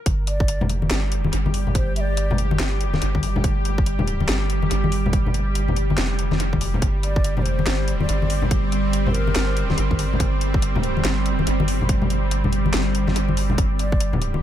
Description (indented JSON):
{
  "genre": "deep dubstep",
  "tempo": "142 BPM",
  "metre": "4/4",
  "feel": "swing 62% on 16ths, half-time",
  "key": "unclear",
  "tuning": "A4 = 441 Hz",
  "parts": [
    { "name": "bowed-like drone", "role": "sustained chords", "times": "0.1-14.4 s", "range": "G3 to G4", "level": "-26 LUFS", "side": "right 1 dB", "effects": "built-in reverb" },
    { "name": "soft dub sub bass", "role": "bass", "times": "0.1-14.4 s", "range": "F1 to G1", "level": "-23 LUFS", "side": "equal", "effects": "none" },
    { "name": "electronic kick drum", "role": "drums", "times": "0.1-14.0 s", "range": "none", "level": "-22 LUFS", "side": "equal", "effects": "high-pass filter on kick" },
    { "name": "garage drum kit", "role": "drums", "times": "0.1-14.3 s", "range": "handclaps, hi-hat, snare drum", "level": "-28 LUFS", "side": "equal", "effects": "high-pass filter on hats, high-pass filter on snare, analog delay" },
    { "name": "breathy ney", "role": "melody", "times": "0.3-2.4, 7.0-9.6, 13.8-14.1 s", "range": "Bb4 to E5", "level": "-32 LUFS", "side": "equal", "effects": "dub echo" },
    { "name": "congas", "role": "percussion", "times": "0.6-14.4 s", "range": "none", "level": "-26 LUFS", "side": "left 3 dB", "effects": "dub echo" }
  ],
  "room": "light reverb",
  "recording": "echo-heavy mix",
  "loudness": "-19 LUFS",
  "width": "side -11 dB against mid",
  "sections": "0.1-14.4 A section",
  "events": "drop 0.1-14.4; kick drops out 12.7-13.6",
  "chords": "none"
}